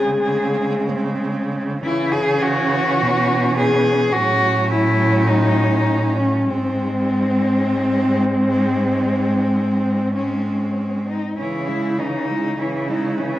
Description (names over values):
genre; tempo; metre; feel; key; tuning
classical, lyrical piece for cello ensemble; 48-53 BPM; 4/4; rubato; C# minor; A4 = 440 Hz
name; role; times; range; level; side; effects
rich cello; melody; 0.0-13.4 s; B#3 to G#4; -20 LUFS; left 2 dB; none
rich cello; second line; 0.0-13.4 s; B#3 to E4; -26 LUFS; right 4 dB; none
clear cello; accompaniment; 0.0-13.4 s; E3 to G#3; -25 LUFS; equal; none
warm cello; bass; 0.0-13.4 s; G#2 to C#3; -22 LUFS; right 1 dB; none
room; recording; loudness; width
wet recital hall reverb, RT60 1.7 s; worn, warbling old tape, cassette tape, warbly pitch drift; -17 LUFS; side -14 dB against mid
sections
0.0-13.4 A section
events
none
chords
0.0 G#/C#; 1.8 C#m; 4.1 F#m/A; 6.5 G#; 11.4 C#m